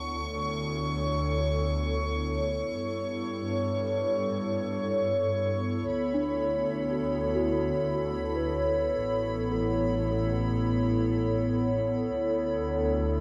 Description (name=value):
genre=ambient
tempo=free time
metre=none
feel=none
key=D major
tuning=A4 = 444 Hz
part: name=warbly tape-like pad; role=sustained chords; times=0.0-13.2 s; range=B3 to C#5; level=-31 LUFS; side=equal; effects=chorus, built-in reverb, phaser
part: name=small celesta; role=arpeggios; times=0.0-12.2 s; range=D4 to A5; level=-38 LUFS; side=equal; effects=analog chorus, delay
part: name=clear symphonic double bass section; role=bass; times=0.0-13.2 s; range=A1 to G2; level=-34 LUFS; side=equal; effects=tube saturation
part: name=clear chamber violin section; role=texture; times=0.0-13.2 s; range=B5 to C#6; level=-41 LUFS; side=equal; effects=none
room=wet huge ambient reverb, RT60 9.0 s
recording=dreamy mix soaked in reverb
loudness=-29 LUFS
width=mono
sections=0.0-13.2 A section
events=fade-in on celesta 0.0-13.2; fade-out on violin section 0.0-13.2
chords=0.0 Dmaj7; 2.8 Gadd9; 5.9 Dmaj7; 9.0 Aadd9; 12.1 Dmaj7(no3)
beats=free time